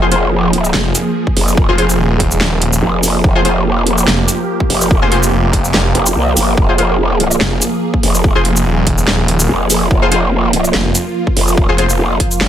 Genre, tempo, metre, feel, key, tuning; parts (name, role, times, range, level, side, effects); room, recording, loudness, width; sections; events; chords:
heavy wobble dubstep; 144 BPM; 4/4; swing 54% on 16ths, half-time; F minor; A4 = 440 Hz
supersaw chords; sustained chords; 0.0-12.5 s; F3 to Ab4; -18 LUFS; right 2 dB; phaser, sidechain pumping, low-pass filter
orchestra-hit-like synth stab; stabs; 0.0-11.8 s; F4 to C5; -18 LUFS; left 3 dB; built-in reverb, digital delay
growl bass; bass; 0.0-12.2 s; F1 to C2; -14 LUFS; equal; chorus, overdrive
dubstep drum kit; drums; 0.1-12.5 s; handclaps, hi-hat, shaker, snare drum; -16 LUFS; right 1 dB
snarling distorted saw bass; bass; 0.7-12.5 s; Eb1 to F1; -15 LUFS; equal; distortion, overdrive
electronic kick drum; drums; 1.3-12.3 s; -15 LUFS; equal
digital ambience; -11 LUFS; side -10 dB against mid
0.0-12.5 A section
0.0 Fm